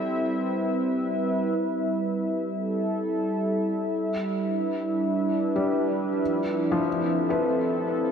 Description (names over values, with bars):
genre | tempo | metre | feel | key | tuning
ambient | free time | none | none | C major | A4 = 435 Hz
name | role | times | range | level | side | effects
warm analog pad | sustained chords | 0.0-8.1 s | F3 to E5 | -24 LUFS | equal | chorus
felt-muted upright piano | arpeggios | 5.6-8.1 s | F3 to B4 | -29 LUFS | left 3 dB | diffuse ambient delay
room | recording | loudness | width
wet lush hall reverb, RT60 2.6 s | none | -24 LUFS | side -7 dB against mid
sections
0.0-1.6 A section; 1.6-8.1 B section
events
none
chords
0.0 Cmaj7; 3.9 Em7; 6.2 Fmaj7